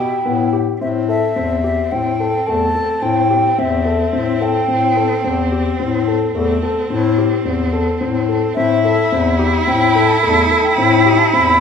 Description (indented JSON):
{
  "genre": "contemporary instrumental, chamber music in an uneven meter",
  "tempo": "108 BPM",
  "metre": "7/4",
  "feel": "straight",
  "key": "A minor",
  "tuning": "A4 = 439 Hz",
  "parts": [
    { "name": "bright baroque flute", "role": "melody", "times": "0.0-11.6 s", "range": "E5 to B5", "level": "-19 LUFS", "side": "equal", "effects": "none" },
    { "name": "clear cello", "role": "second line", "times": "0.0-11.6 s", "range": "C4 to E4", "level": "-20 LUFS", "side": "right 3 dB", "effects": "none" },
    { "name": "dark grand piano", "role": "arpeggios", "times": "0.0-11.5 s", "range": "A3 to A4", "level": "-20 LUFS", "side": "left 2 dB", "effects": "none" },
    { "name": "warm bass clarinet", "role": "bass", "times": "0.0-11.6 s", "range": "E2 to B2", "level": "-18 LUFS", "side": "left 5 dB", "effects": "none" }
  ],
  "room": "wet recital hall reverb, RT60 1.2 s",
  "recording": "recorded in a church or concert hall, studio reverb",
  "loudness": "-13 LUFS",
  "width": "side -6 dB against mid",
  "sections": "0.8-11.6 A section",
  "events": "none",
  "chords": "0.0 Em; 0.8 Am7",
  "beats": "0.26 | 0.81 1.37 1.92 2.47 3.03 3.58 4.13 | 4.69 5.24 5.80 6.35 6.90 7.46 8.01 | 8.57 9.12 9.68 10.23 10.79 11.34"
}